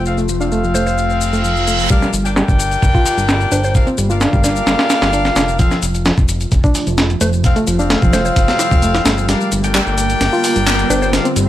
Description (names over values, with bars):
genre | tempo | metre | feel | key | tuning
breakbeat, breaks | 130 BPM | 4/4 | straight | G minor | A4 = 439 Hz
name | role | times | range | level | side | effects
warbly tape-like pad | sustained chords | 0.0-11.5 s | C3 to F4 | -25 LUFS | right 1 dB | chorus, built-in reverb, phaser, sidechain pumping
bright horn section | stabs | 0.0-11.3 s | C4 to G5 | -19 LUFS | left 2 dB | low-pass filter, dub echo
fat analog bass | bass | 0.0-11.5 s | F1 to G1 | -19 LUFS | equal | none
electronic shaker and handclaps | drums | 0.1-11.5 s | none | -24 LUFS | left 4 dB | high-pass filter on perc, high-pass filter on snare, high-pass filter on room
reed electric piano | riff | 0.2-11.5 s | F3 to F4 | -20 LUFS | equal | fast tremolo, vintage 12-bit sampler grit, low-pass filter, dub echo
mallet-like synth pluck | melody | 0.7-4.1, 7.2-11.5 s | C5 | -24 LUFS | right 1 dB | chorus, telephone sound, dub echo
reverse cymbal and riser | sound effects | 1.2-11.5 s | none | -25 LUFS | right 1 dB | none
breakbeat sampler-style drum kit | drums | 1.9-11.5 s | hi-hat, kick drum, snare drum | -15 LUFS | equal | low-pass filter on kick, low-pass filter on hats, low-pass filter on snare
room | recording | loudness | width
light reverb | none | -12 LUFS | side -13 dB against mid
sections
0.0-1.9 A section; 1.9-11.5 B section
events
reverse cymbal 1.2-1.9; build-up 1.9-11.5; filter sweep on drum 1.9-11.5; filter sweep on reed electric piano 1.9-11.5; filter sweep on ambient pad 1.9-11.5; filter sweep on synth pluck 1.9-11.5; drum fill 9.3-11.5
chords
0.0 F; 1.9 Gm7; 5.6 F; 9.3 Gm7